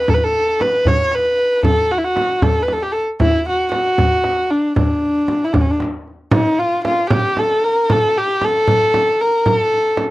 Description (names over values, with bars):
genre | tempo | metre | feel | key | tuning
Persian modal ensemble | 77 BPM (dotted quarters) | 6/8 | straight | D dastgah mahur | A4 = 440 Hz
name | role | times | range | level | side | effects
warm kamancheh | melody | 0.0-10.0 s | C#4 to C#5 | -15 LUFS | equal | none
frame drum | percussion | 0.1-10.1 s | none | -19 LUFS | right 2 dB | none
tombak | percussion | 0.1-6.1 s | none | -21 LUFS | left 1 dB | none
room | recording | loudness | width
light reverb | dry, close 1970s-style studio recording | -14 LUFS | side -17 dB against mid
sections
0.0-6.3 A section; 6.3-10.1 B section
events
none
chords
none